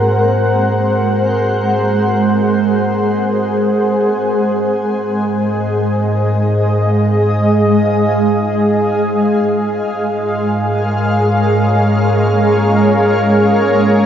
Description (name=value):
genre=ambient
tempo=free time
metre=none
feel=none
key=Ab mixolydian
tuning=A4 = 441 Hz
part: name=granular cloud pad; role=sustained chords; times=0.0-14.1 s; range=Ab3 to Gb5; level=-13 LUFS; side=equal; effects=built-in reverb
part: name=deep rumbling drone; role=bass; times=0.0-14.1 s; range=Ab2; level=-19 LUFS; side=equal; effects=built-in reverb
room=wet huge ambient reverb, RT60 8.1 s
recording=dark, warm production, nothing above 7.5 kHz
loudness=-12 LUFS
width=side -9 dB against mid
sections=0.0-14.1 A section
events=filter sweep on ambient pad 0.0-14.1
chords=0.0 Ab7; 4.4 Ab6; 9.5 Bbm7/Ab